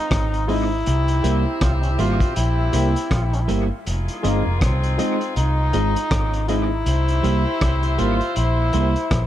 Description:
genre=roots reggae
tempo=80 BPM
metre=4/4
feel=swing 58% on 16ths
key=F minor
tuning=A4 = 439 Hz
part: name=brilliant trombone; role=melody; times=0.0-9.2 s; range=Bb3 to F4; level=-25 LUFS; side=left 1 dB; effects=dub echo
part: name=clear horn section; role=second line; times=0.0-9.3 s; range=Ab3 to E5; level=-30 LUFS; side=left 2 dB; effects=dub echo
part: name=vintage muted fingered electric bass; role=bass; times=0.1-9.3 s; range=F1 to C2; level=-21 LUFS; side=equal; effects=none
part: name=crunchy breakbeat drum kit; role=drums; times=0.1-9.3 s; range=hi-hat, kick drum, rim click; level=-25 LUFS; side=equal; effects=dub echo
part: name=electric guitar at the edge of break-up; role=accompaniment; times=0.5-8.9 s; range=G3 to E4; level=-26 LUFS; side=right 3 dB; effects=dub echo
part: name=barky reed electric piano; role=stabs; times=0.5-9.0 s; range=F4 to E5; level=-30 LUFS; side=left 4 dB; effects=overdrive, fast tremolo
room=little or no reverb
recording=dark, warm production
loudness=-18 LUFS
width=side -12 dB against mid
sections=0.0-9.3 A section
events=none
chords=0.0 Fm7; 0.9 C7; 3.9 Fm7; 6.9 C7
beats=0.11 | 0.86 1.61 2.36 3.11 | 3.86 4.61 5.36 6.11 | 6.86 7.61 8.36 9.12

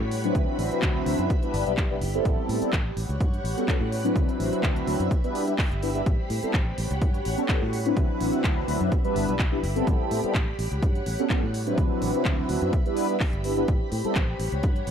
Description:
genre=filtered disco house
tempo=126 BPM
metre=4/4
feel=swing 53% on 16ths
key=A dorian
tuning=A4 = 441 Hz
part: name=string machine, full ensemble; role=sustained chords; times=0.0-14.9 s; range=C4 to B5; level=-32 LUFS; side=equal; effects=ensemble chorus, vintage 12-bit sampler grit, sidechain pumping
part: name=fingered electric bass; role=bass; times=0.0-14.9 s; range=G1 to A2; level=-30 LUFS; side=equal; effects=sidechain pumping
part: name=house drum kit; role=drums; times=0.1-14.9 s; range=handclaps, hi-hat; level=-34 LUFS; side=equal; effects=sidechain pumping on hats
part: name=mellow synth brass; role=accompaniment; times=0.2-14.1 s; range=F#3 to B4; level=-27 LUFS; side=equal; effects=chorus, phaser, sidechain pumping
part: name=electronic kick drum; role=drums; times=0.3-14.7 s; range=none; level=-25 LUFS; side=equal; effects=none
room=digital ambience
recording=none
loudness=-23 LUFS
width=side -8 dB against mid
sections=0.0-14.9 A section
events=none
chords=0.3 D13; 1.3 G6; 2.3 Am9; 3.0 A13; 4.2 D13; 5.1 G6; 6.1 Am9; 6.8 A13; 8.0 D13; 8.9 G6; 9.9 Am9; 10.6 A13; 11.8 D13; 12.7 G6; 13.7 Am9; 14.4 A13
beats=| 0.35 0.82 1.30 1.78 | 2.25 2.73 3.21 3.68 | 4.16 4.63 5.11 5.59 | 6.06 6.54 7.01 7.49 | 7.97 8.44 8.92 9.40 | 9.87 10.35 10.82 11.30 | 11.78 12.25 12.73 13.21 | 13.68 14.16 14.63

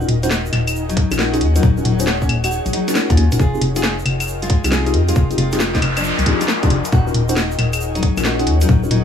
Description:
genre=UK garage, two-step garage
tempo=136 BPM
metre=4/4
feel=swing 66% on 16ths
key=Eb dorian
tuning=A4 = 442 Hz
part: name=nylon-string guitar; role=melody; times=0.0-9.0 s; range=F3 to Ab4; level=-24 LUFS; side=left 2 dB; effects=tape echo
part: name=mellow tine electric piano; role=stabs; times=0.0-9.0 s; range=C4 to C5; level=-23 LUFS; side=left 1 dB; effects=medium stereo tremolo
part: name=organ-like FM bass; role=bass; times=0.0-9.0 s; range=Eb1 to F2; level=-18 LUFS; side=left 1 dB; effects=none
part: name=tube shaker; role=percussion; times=0.0-8.9 s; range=none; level=-35 LUFS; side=right 5 dB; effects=none
part: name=ethereal airy pad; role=texture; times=0.0-9.0 s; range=Eb4 to G5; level=-26 LUFS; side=left 1 dB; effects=ensemble chorus, built-in reverb, sidechain pumping
part: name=garage drum kit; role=drums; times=0.1-9.0 s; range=claves, hi-hat, snare drum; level=-22 LUFS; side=left 1 dB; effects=none
part: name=electronic kick drum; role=drums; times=1.0-8.8 s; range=none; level=-16 LUFS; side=equal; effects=none
part: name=noise sweep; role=sound effects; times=5.7-6.9 s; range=none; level=-25 LUFS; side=left 2 dB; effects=none
room=digital ambience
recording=none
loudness=-14 LUFS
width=side -8 dB against mid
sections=0.0-9.0 A section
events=noise sweep 5.7-6.9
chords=0.0 Ebm9; 3.4 Fm9; 6.9 Ebm9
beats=0.31 0.75 1.19 | 1.63 2.07 2.51 2.95 | 3.40 3.84 4.28 4.72 | 5.16 5.60 6.04 6.48 | 6.92 7.37 7.81 8.25 | 8.69

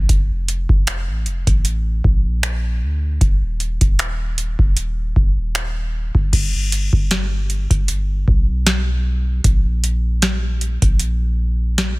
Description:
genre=contemporary R&B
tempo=77 BPM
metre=4/4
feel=swing 54% on 16ths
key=unclear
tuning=A4 = 440 Hz
part: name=clean 808-style bass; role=bass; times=0.0-12.0 s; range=Eb1 to D2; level=-19 LUFS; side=equal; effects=none
part: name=booming analog drum machine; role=drums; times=0.1-12.0 s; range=crash cymbal, finger snaps, hi-hat, kick drum, snare drum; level=-17 LUFS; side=equal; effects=soft clipping on snare
room=little or no reverb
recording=dense, heavily limited modern master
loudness=-16 LUFS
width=side -23 dB against mid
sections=0.0-6.3 A section; 6.3-12.0 B section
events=none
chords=none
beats=| 0.09 0.87 1.65 2.43 | 3.21 3.99 4.77 5.55 | 6.33 7.11 7.89 8.66 | 9.44 10.22 11.00 11.78

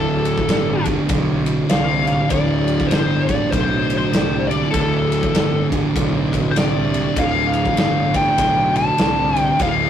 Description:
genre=stoner and doom metal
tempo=99 BPM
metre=4/4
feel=swing 61% on 8ths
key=D dorian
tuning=A4 = 441 Hz
part: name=fuzz lead guitar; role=melody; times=0.0-9.9 s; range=A4 to A5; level=-20 LUFS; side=left 2 dB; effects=wah, distortion
part: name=thick fuzz guitar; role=riff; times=0.0-9.9 s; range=D2 to D3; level=-25 LUFS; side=left 4 dB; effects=distortion
part: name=thick fuzz guitar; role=riff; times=0.0-9.9 s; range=D2 to D3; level=-22 LUFS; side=right 5 dB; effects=distortion
part: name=fuzz picked electric bass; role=bass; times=0.0-9.9 s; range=D1 to C2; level=-24 LUFS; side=equal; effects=overdrive
part: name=big rock drum kit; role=drums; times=0.3-9.8 s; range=kick drum, ride cymbal, snare drum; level=-23 LUFS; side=left 1 dB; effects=none
room=moderate studio reverb, RT60 0.7 s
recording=rough rehearsal-room recording, tube saturation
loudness=-16 LUFS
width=side -9 dB against mid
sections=0.0-9.9 A section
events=none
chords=0.0 D5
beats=0.49 1.10 1.70 | 2.31 2.91 3.52 4.13 | 4.73 5.34 5.95 6.56 | 7.17 7.78 8.38 8.99 | 9.60

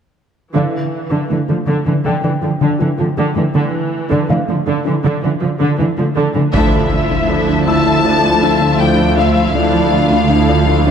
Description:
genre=cinematic, hybrid orchestral and electronic film score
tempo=80 BPM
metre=4/4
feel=straight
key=D minor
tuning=A4 = 440 Hz
part: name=rich symphonic viola section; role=accompaniment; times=0.5-10.9 s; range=D3 to E5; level=-20 LUFS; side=right 2 dB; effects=none
part: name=dark symphonic cello section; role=bass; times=0.5-10.9 s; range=D2 to D3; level=-18 LUFS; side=right 2 dB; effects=none
part: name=tight sequenced synth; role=arpeggios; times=0.6-10.9 s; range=D3 to D4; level=-21 LUFS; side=equal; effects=chorus, digital delay
part: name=felt-muted upright piano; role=texture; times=0.6-10.9 s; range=E4 to E6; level=-25 LUFS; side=left 2 dB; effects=digital delay
part: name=rich symphonic violin section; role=melody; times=6.5-10.9 s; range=E5 to A5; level=-18 LUFS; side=left 5 dB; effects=none
part: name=dark symphonic violin section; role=second line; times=6.5-10.9 s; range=E4 to A4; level=-20 LUFS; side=left 2 dB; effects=none
part: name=mellow French horn section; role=sustained chords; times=6.5-10.9 s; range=F3 to A3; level=-19 LUFS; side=left 5 dB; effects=none
part: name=clear symphonic double bass section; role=bass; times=6.5-10.9 s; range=D2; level=-18 LUFS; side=right 4 dB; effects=none
part: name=taiko ensemble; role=drums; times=6.5-8.0 s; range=none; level=-23 LUFS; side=left 1 dB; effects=none
part: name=impact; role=sound effects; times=6.5-9.5 s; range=none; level=-22 LUFS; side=left 1 dB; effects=none
room=wet scoring stage reverb, RT60 2.0 s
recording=none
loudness=-12 LUFS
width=side -8 dB against mid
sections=0.5-6.5 A section; 6.5-10.9 B section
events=band accent 6.5-7.3; impact 6.5-9.5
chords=0.5 Dmadd9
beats=| 0.55 1.30 2.05 2.80 | 3.55 4.30 5.05 5.80 | 6.55 7.30 8.05 8.80 | 9.55 10.30

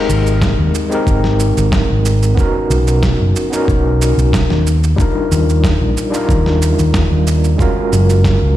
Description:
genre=sunset chillout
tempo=92 BPM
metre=4/4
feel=straight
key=unclear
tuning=A4 = 441 Hz
part: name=overdriven tine electric piano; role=accompaniment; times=0.0-8.6 s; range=G3 to Bb4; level=-17 LUFS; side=moving between left 5 dB and right 3 dB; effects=medium tremolo, auto-pan, low-pass filter, tape echo
part: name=fingered electric bass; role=bass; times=0.1-8.5 s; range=F#1 to Eb2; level=-13 LUFS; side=equal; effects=none
part: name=electronic shaker and snare drum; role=drums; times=0.1-8.4 s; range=none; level=-22 LUFS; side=right 1 dB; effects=overdrive
part: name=electronic kick drum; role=drums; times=0.4-8.4 s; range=none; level=-15 LUFS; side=equal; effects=overdrive
room=light reverb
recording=played on a big sound system in a bare room, large studio reverb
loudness=-11 LUFS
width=side -13 dB against mid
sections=0.0-8.6 A section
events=none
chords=0.0 Abmaj9; 2.4 Bmaj9; 4.7 Ebmaj9; 7.6 Gbmaj9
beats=0.42 1.07 1.73 | 2.38 3.03 3.68 4.33 | 4.99 5.64 6.29 6.94 | 7.59 8.25

